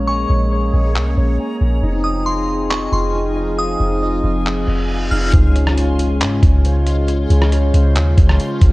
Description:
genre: hip hop, atmospheric cloud-rap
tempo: 137 BPM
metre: 4/4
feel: half-time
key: Db major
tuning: A4 = 440 Hz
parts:
  - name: warm analog pad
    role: sustained chords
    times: 0.0-8.7 s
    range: Db3 to Ab4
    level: -22 LUFS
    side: left 1 dB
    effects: chorus, sidechain pumping, low-pass filter
  - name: concert harp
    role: arpeggios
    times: 0.0-8.7 s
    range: C4 to C6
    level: -26 LUFS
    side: equal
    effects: low-pass filter, tape echo
  - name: soft 808-style bass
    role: bass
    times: 0.0-8.7 s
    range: F1 to Ab2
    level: -16 LUFS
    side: equal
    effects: none
  - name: backwards swelling texture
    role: texture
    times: 0.0-8.7 s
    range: F4 to C6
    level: -30 LUFS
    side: left 1 dB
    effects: built-in reverb
  - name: glassy synth bell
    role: melody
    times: 0.1-5.3 s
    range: C6 to F6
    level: -24 LUFS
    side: left 1 dB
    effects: chorus, low-pass filter, tape echo
  - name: trip hop sampler-style drum kit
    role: drums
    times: 1.0-8.7 s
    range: handclaps, hi-hat, kick drum, rim click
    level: -16 LUFS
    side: equal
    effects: none
  - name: reverse cymbal and impact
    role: sound effects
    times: 4.6-7.1 s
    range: none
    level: -29 LUFS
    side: right 1 dB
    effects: none
room: digital ambience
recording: worn, warbling old tape, cassette tape, warbly pitch drift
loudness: -14 LUFS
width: side -20 dB against mid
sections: 0.0-5.3 A section; 5.3-8.7 B section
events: reverse cymbal 4.6-5.3; impact 5.3-7.1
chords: 0.0 Bbm7; 1.8 Fm7; 5.3 Dbmaj7

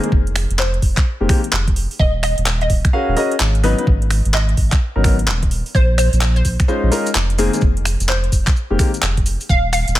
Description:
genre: UK garage, two-step garage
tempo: 128 BPM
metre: 4/4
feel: swing 64% on 16ths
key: unclear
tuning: A4 = 440 Hz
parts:
  - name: warm grand piano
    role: stabs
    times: 0.0-8.9 s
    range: Eb3 to F5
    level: -20 LUFS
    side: left 2 dB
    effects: ping-pong delay
  - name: garage drum kit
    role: drums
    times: 0.0-10.0 s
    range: finger snaps, handclaps, hi-hat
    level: -22 LUFS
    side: equal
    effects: none
  - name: saturated sub bass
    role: bass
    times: 0.1-10.0 s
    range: Eb1 to Bb1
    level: -18 LUFS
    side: equal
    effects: none
  - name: electronic kick drum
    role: drums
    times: 0.1-9.6 s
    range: none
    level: -16 LUFS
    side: equal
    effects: none
  - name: hollow square pluck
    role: melody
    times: 0.6-9.9 s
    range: C5 to F5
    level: -23 LUFS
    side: right 1 dB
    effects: ensemble chorus, digital delay
  - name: maracas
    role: percussion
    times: 5.7-10.0 s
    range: none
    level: -30 LUFS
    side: left 2 dB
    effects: none
room: little or no reverb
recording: none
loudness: -14 LUFS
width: side -14 dB against mid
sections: 0.0-10.0 A section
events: none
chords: 0.0 Fm; 2.0 Ebm11; 3.6 Abm11; 5.7 Bbm11; 7.4 Fm11; 9.5 Ebsus2

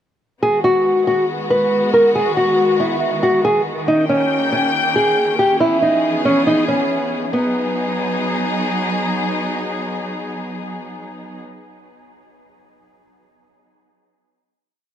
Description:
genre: hip hop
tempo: 139 BPM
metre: 4/4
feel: half-time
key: G# minor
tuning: A4 = 440 Hz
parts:
  - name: nylon-string guitar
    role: melody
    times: 0.4-8.6 s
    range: B3 to B4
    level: -16 LUFS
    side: equal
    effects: low-pass filter
  - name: muted studio string section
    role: sustained chords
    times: 0.4-11.4 s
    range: D#3 to G5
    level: -21 LUFS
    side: left 1 dB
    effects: none
room: light reverb, small room ambience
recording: none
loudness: -15 LUFS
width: side -10 dB against mid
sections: 0.4-7.3 hook; 7.3-10.8 final chord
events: none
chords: 0.4 G#m7; 3.9 D#7; 5.6 E6; 7.3 G#m7

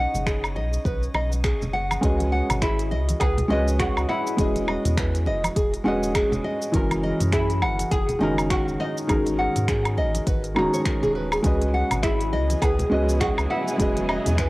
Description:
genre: organic downtempo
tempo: 102 BPM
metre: 4/4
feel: swing 59% on 16ths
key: unclear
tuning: A4 = 438 Hz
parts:
  - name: oud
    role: melody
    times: 0.0-14.3 s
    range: D#4 to G#4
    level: -29 LUFS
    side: left 1 dB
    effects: cassette tape, analog delay
  - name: nylon-string guitar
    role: arpeggios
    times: 0.0-14.5 s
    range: F#4 to F#5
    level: -28 LUFS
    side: equal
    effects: cassette tape, tape echo
  - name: warm sub bass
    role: bass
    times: 0.0-14.5 s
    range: D#1 to G#2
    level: -26 LUFS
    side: equal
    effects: transformer saturation, sidechain pumping
  - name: drifting glass-harmonics texture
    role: texture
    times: 0.0-2.0 s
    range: C#4 to D#5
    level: -41 LUFS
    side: equal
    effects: chorus, built-in reverb, cassette tape
  - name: afro-pop drum kit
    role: drums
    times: 0.1-14.5 s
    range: cabasa, finger snaps, hi-hat, woodblock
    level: -30 LUFS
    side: equal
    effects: none
  - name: congas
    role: percussion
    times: 0.1-14.4 s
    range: none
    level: -33 LUFS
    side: right 1 dB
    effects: none
  - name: electronic kick drum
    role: drums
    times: 0.3-14.5 s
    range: none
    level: -26 LUFS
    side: equal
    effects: none
  - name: felt-muted upright piano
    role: accompaniment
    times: 2.0-14.5 s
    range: D#3 to A#5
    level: -26 LUFS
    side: equal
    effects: sidechain pumping, cassette tape, tape echo
  - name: dark studio string section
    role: sustained chords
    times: 11.4-14.5 s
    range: C#3 to G#4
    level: -32 LUFS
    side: equal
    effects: sidechain pumping, cassette tape
room: moderate spring reverb, RT60 2.1 s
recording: home recording on cassette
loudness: -20 LUFS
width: side -20 dB against mid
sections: 0.0-2.0 A section; 2.0-14.5 B section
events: none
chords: 0.0 G#m; 2.0 C#m7; 4.4 Emaj7; 6.7 F#7; 9.1 G#m7; 11.4 C#m7; 13.8 Emaj7

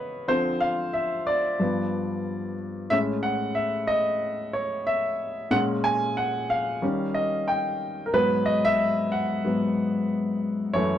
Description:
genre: soul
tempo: 92 BPM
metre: 4/4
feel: swing 58% on 16ths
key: unclear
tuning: A4 = 440 Hz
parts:
  - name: warm baby grand piano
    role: solo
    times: 0.0-11.0 s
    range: F#2 to G#5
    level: -23 LUFS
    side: left 1 dB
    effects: none
room: wet studio ambience, RT60 0.5 s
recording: band playing live in one room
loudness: -23 LUFS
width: side -10 dB against mid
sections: 0.0-11.0 A section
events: grand piano solo 0.0-11.0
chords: 0.3 Dm7; 1.6 G7; 2.9 Amaj7; 5.5 A#m7; 6.8 D#7; 8.1 G#m7

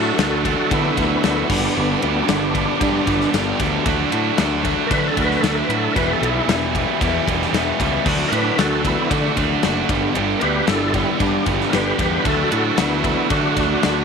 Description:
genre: classic rock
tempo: 114 BPM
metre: 4/4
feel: straight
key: unclear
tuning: A4 = 441 Hz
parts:
  - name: overdriven tonewheel organ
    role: melody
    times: 0.0-14.0 s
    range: G3 to B4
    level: -23 LUFS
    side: equal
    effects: slow rotary speaker, chorus vibrato, tape echo
  - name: cranked stack guitar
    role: riff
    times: 0.0-14.0 s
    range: E2 to G4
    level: -21 LUFS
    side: right 15 dB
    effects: overdrive
  - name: raw garage guitar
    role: riff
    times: 0.0-14.0 s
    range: G2 to E4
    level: -25 LUFS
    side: left 15 dB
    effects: overdrive
  - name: fuzz picked electric bass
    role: bass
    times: 0.0-14.0 s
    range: E1 to D3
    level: -24 LUFS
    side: equal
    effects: overdrive
  - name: gated 80s drum kit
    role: drums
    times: 0.2-14.0 s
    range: crash cymbal, kick drum, ride cymbal, snare drum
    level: -23 LUFS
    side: left 4 dB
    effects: none
room: light reverb, studio ambience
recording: 1960s-style stereo with parts hard left and right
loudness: -16 LUFS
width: side -6 dB against mid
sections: 0.0-14.0 A section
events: tonewheel organ solo 0.0-14.0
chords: 0.0 D; 1.5 G; 3.9 D; 6.0 Em; 8.1 D; 9.9 G; 12.3 D

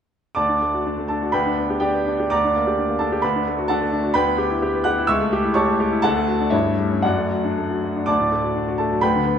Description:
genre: classical, virtuoso piano study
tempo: 114-132 BPM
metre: 2/4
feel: rubato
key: D major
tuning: A4 = 440 Hz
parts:
  - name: bright grand piano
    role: solo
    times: 0.3-9.4 s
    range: C#2 to F#6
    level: -18 LUFS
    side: equal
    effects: none
room: wet recital hall reverb, RT60 1.3 s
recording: none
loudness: -18 LUFS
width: side -8 dB against mid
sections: 0.4-8.1 A section; 8.1-9.4 A section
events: none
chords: 0.4 D; 1.3 G/D; 2.3 Gm/D; 3.2 D; 4.2 Em7/D; 5.1 A7/C#; 6.0 D; 6.5 A7/G; 7.0 D/F#; 8.1 D

